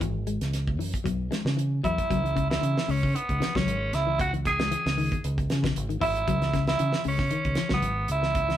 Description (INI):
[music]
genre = afrobeat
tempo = 115 BPM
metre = 4/4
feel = swing 54% on 16ths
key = C# minor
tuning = A4 = 440 Hz
[part]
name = electric guitar at the edge of break-up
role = arpeggios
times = 0.0-8.6 s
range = C#3 to G#3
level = -31 LUFS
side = left 6 dB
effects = none
[part]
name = fingered electric bass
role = bass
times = 0.0-8.6 s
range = G#1 to C#3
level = -28 LUFS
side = right 1 dB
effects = none
[part]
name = damped 70s drum kit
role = drums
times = 0.0-8.6 s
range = hi-hat, kick drum, snare drum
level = -31 LUFS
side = right 1 dB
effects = none
[part]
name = raspy tenor saxophone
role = melody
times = 1.8-8.6 s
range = B3 to G#4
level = -27 LUFS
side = right 2 dB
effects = none
[sound]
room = moderate studio reverb, RT60 0.8 s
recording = band playing live in one room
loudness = -24 LUFS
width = side -11 dB against mid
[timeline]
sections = 0.0-2.1 A section; 2.1-8.6 B section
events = none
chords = 0.0 C#m